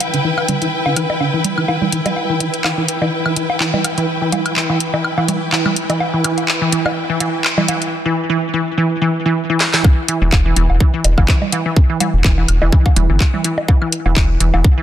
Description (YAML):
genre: minimal techno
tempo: 125 BPM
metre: 4/4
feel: swing 55% on 16ths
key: E minor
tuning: A4 = 440 Hz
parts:
  - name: garage drum kit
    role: drums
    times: 0.0-14.5 s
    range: handclaps, hi-hat, snare drum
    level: -20 LUFS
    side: equal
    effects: high-pass filter on hats, high-pass filter on snare, high-pass filter on room
  - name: woodblock, congas and bongos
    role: percussion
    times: 0.0-14.6 s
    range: none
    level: -22 LUFS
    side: right 1 dB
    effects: digital delay
  - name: clear symphonic string section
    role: texture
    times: 0.0-7.9 s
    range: E4 to G5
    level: -22 LUFS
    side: left 1 dB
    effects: sidechain pumping
  - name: resonant blip pluck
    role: riff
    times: 0.1-14.8 s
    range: D3 to G3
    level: -18 LUFS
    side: equal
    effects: chorus, sidechain pumping, digital delay
  - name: electronic kick drum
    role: drums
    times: 9.8-14.8 s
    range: none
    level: -12 LUFS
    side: equal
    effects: none
  - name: round analog bass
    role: bass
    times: 10.2-14.6 s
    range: E1 to G1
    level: -14 LUFS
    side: equal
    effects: sidechain pumping
room: light reverb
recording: dense, heavily limited modern master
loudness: -14 LUFS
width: side -11 dB against mid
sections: 0.0-9.8 A section; 9.8-14.8 B section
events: build-up 0.0-9.8; filter sweep on synth pluck 0.0-9.8; drum fill 9.6; drop 9.8-14.8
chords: 0.0 Em; 9.8 N.C.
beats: | 0.24 0.72 1.21 1.69 | 2.17 2.65 3.12 3.60 | 4.08 4.57 5.04 5.53 | 6.00 6.49 6.96 7.45 | 7.92 8.40 8.88 9.37 | 9.85 10.32 10.80 11.29 | 11.77 12.24 12.72 13.21 | 13.69 14.16 14.64